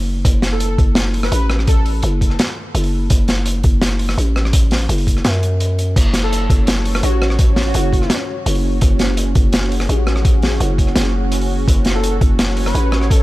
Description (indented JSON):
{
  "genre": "half-time drum and bass",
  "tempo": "168 BPM",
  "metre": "4/4",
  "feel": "half-time",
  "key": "F# minor",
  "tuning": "A4 = 440 Hz",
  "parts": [
    { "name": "growling 808-style bass", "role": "bass", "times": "0.0-13.2 s", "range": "F#1 to F#2", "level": "-17 LUFS", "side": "equal", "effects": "none" },
    { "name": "crunchy breakbeat drum kit", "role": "drums", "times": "0.2-13.2 s", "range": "crash cymbal, hi-hat, rim click, snare drum", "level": "-21 LUFS", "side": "equal", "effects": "none" },
    { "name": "electronic kick drum", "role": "drums", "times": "0.2-13.2 s", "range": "none", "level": "-14 LUFS", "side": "equal", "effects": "none" },
    { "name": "airy dreamy lead", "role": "melody", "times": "0.5-1.8, 6.2-8.2, 11.9-13.2 s", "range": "F#4 to B4", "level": "-26 LUFS", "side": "equal", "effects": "chorus, ping-pong delay" },
    { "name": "dark analog pad", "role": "sustained chords", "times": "6.4-13.2 s", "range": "C#4 to C#5", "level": "-25 LUFS", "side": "right 2 dB", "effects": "chorus, sidechain pumping" }
  ],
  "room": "small room ambience",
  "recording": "none",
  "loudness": "-14 LUFS",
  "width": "side -18 dB against mid",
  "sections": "0.0-13.2 A section",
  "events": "none",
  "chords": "0.0 F#5"
}